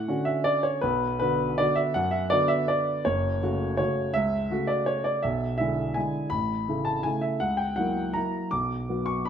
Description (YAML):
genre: classical, piano waltz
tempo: 164 BPM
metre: 3/4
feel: uneven beats, rubato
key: F# minor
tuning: A4 = 439 Hz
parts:
  - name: warm upright piano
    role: solo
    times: 0.0-9.3 s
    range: F#1 to D6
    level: -24 LUFS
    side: equal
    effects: none
room: moderate recital hall reverb, RT60 1.4 s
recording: close, detailed microphones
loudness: -24 LUFS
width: side -8 dB against mid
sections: 0.0-9.3 A section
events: none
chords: 0.0 Dmaj7; 0.8 Bm; 3.1 F#m; 5.2 E7/B; 6.3 A; 7.4 F#7/C#; 8.5 Bm